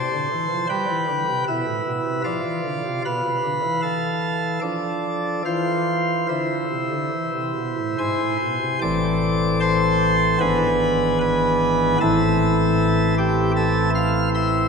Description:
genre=classical, chorale-style piece for pipe organ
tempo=74 BPM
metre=4/4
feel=uneven beats, rubato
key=A minor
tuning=A4 = 439 Hz
part: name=pipe organ, sparkling flutes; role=solo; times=0.0-14.7 s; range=G#1 to F6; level=-19 LUFS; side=equal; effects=none
room=wet church reverb, RT60 3.0 s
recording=minimal, uncompressed stereo recording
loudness=-19 LUFS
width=side -5 dB against mid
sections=0.0-8.8 A section; 8.8-14.7 B section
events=none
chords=0.0 Am; 0.7 Em; 2.2 Dm; 5.4 Cadd11; 7.1 E; 8.8 Am; 10.4 E7/G#; 12.0 Am

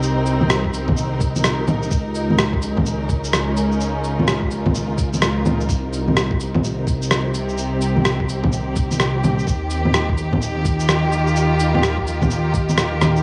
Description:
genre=future garage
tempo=127 BPM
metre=4/4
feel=swing 63% on 16ths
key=C phrygian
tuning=A4 = 442 Hz
part: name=dark chamber string section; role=sustained chords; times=0.0-13.2 s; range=C3 to Bb4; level=-27 LUFS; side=equal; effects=sidechain pumping
part: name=dark detuned saw bass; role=bass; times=0.0-13.2 s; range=C2 to Eb2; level=-24 LUFS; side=equal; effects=sidechain pumping
part: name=electronic shaker, cabasa, bongos and rim click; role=drums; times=0.0-13.2 s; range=none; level=-23 LUFS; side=equal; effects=none
part: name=electronic kick drum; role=drums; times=0.6-12.7 s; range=none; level=-25 LUFS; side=equal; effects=none
room=light reverb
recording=none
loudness=-19 LUFS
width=mono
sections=0.0-13.2 A section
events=none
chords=0.0 Cm7; 1.9 Db6; 5.7 Cm7; 9.5 Ebadd9

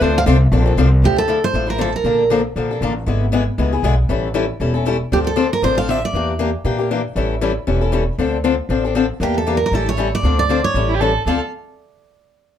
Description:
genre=acoustic string swing (jazz manouche)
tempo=235 BPM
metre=4/4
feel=swing 56% on 8ths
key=D minor, D harmonic minor from 9.2 s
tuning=A4 = 439 Hz
part: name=picked steel-string acoustic guitar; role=melody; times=0.0-2.3, 5.1-6.3, 9.2-11.4 s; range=G4 to F5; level=-19 LUFS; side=right 3 dB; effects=slapback echo
part: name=picked swing-style acoustic guitar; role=accompaniment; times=0.0-11.4 s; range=D3 to A4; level=-19 LUFS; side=left 5 dB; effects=none
part: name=upright bass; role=bass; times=0.0-11.4 s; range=E1 to Bb2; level=-19 LUFS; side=equal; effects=none
part: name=warm violin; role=second line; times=10.9-11.4 s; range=E4 to A4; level=-22 LUFS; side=right 5 dB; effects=none
room=moderate club reverb, RT60 0.6 s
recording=none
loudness=-15 LUFS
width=side -10 dB against mid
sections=0.0-1.0 A section; 1.0-9.2 B section; 9.2-11.3 C section; 11.3-12.3 D section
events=steel-string acoustic guitar solo 0.0-1.0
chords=0.0 Dm7; 1.0 Dmadd9; 2.0 Bbmaj7; 3.1 E7/G#; 4.1 A7; 5.1 Dm7; 6.1 Em7b5; 7.2 A7; 8.2 Dm7; 9.2 Em7b5; 9.7 A7; 10.2 Dm7; 10.7 A7; 11.3 Dm7

